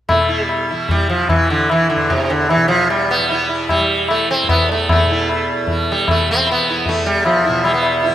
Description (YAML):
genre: indian classical, Hindustani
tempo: 151 BPM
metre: 3/4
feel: straight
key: E raga bhairavi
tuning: A4 = 440 Hz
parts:
  - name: sitar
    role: melody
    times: 0.1-8.1 s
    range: C3 to E4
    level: -16 LUFS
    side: right 1 dB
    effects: none
  - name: tanpura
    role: drone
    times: 0.1-8.1 s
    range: E2 to E3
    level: -22 LUFS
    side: right 1 dB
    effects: none
  - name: tabla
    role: percussion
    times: 0.1-8.1 s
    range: none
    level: -18 LUFS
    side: left 1 dB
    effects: none
room: wet lush hall reverb, RT60 2.6 s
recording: rough home demo mix, faint mains hum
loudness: -13 LUFS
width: side -11 dB against mid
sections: 0.1-8.1 A section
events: none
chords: none